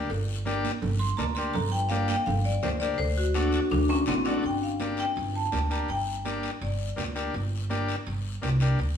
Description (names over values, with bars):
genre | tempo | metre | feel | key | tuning
latin, cumbia | 166 BPM | 4/4 | straight | G minor | A4 = 442 Hz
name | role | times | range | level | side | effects
marimba with hard mallets | melody | 0.0-7.1 s | C4 to C6 | -29 LUFS | left 2 dB | none
combo organ | accompaniment | 0.0-8.8 s | A3 to A4 | -33 LUFS | left 2 dB | none
upright bass | bass | 0.0-9.0 s | G1 to D2 | -29 LUFS | right 1 dB | none
cowbell and timbales | percussion | 0.1-9.0 s | none | -41 LUFS | right 3 dB | none
guiro | percussion | 0.1-9.0 s | none | -40 LUFS | left 5 dB | none
congas | percussion | 0.5-9.0 s | none | -36 LUFS | right 6 dB | none
room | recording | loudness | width
wet stone room reverb, RT60 1.2 s | band playing live in one room, small room ambience | -25 LUFS | side -8 dB against mid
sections
0.0-4.4 A section; 4.4-9.0 B section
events
marimba solo 0.0-4.4; drum fill 3.9-4.4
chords
0.0 Gm; 3.0 D; 4.4 Gm